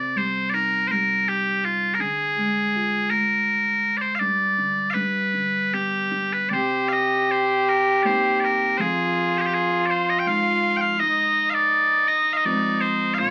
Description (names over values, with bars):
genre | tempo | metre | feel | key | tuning
celtic folk, Celtic slow air | 81 BPM | 3/4 | rubato | C minor | A4 = 440 Hz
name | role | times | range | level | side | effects
loud bright bagpipes | melody | 0.0-13.3 s | F4 to G5 | -23 LUFS | equal | none
felt-muted upright piano | accompaniment | 0.0-13.3 s | F2 to F4 | -31 LUFS | equal | none
warm fiddle | second line | 6.5-13.3 s | Eb4 to G4 | -26 LUFS | equal | none
room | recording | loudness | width
moderate studio reverb, RT60 0.5 s | very old 78 rpm record, vinyl crackle | -22 LUFS | mono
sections
0.0-6.5 A section; 6.5-13.3 B section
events
none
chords
0.0 Cm; 2.0 Ddim; 4.2 G5; 4.9 G; 6.5 Cm7; 8.8 Fm7; 11.0 Ab6